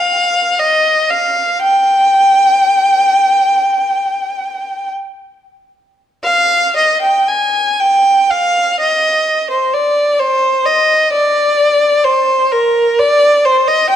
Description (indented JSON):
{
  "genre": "classical, free, expressive piece for unaccompanied violin",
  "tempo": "38-66 BPM",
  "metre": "4/4",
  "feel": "rubato",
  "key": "unclear",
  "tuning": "A4 = 440 Hz",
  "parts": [
    { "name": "warm violin", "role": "solo", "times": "0.0-14.0 s", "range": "Bb4 to Ab5", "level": "-10 LUFS", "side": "equal", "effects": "none" }
  ],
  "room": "moderate recital hall reverb, RT60 1.6 s",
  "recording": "dark, warm production",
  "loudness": "-10 LUFS",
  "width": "side -10 dB against mid",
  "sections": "0.0-6.2 A section; 6.2-14.0 B section",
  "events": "none",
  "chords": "none"
}